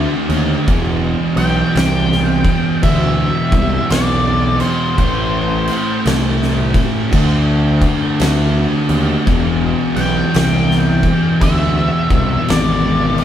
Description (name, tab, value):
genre	stoner and doom metal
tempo	56 BPM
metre	4/4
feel	swing 64% on 8ths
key	E minor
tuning	A4 = 441 Hz
part	scooped high-gain guitar	riff	0.0-13.2 s	E2 to D4	-23 LUFS	left 1 dB	distortion
part	thick fuzz guitar	riff	0.0-13.2 s	E2 to D4	-21 LUFS	left 6 dB	distortion
part	thick fuzz guitar	riff	0.0-13.2 s	E2 to D4	-20 LUFS	right 7 dB	distortion
part	fuzz picked electric bass	bass	0.0-13.2 s	E1 to D#2	-18 LUFS	equal	overdrive
part	oversized low-tuned drum kit	drums	0.3-13.2 s	crash cymbal, kick drum, snare drum	-19 LUFS	equal	none
part	octave-fuzz lead guitar	melody	1.4-13.2 s	C5 to G5	-20 LUFS	left 1 dB	distortion
room	light reverb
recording	band playing live in one room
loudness	-13 LUFS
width	side -10 dB against mid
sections	0.0-13.2 A section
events	none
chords	0.0 D5; 0.7 Em; 5.0 Am; 7.1 D5; 9.3 Em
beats	| 0.68 1.76 2.83 3.91 | 4.98 6.06 7.13 8.20 | 9.28 10.35 11.42 12.49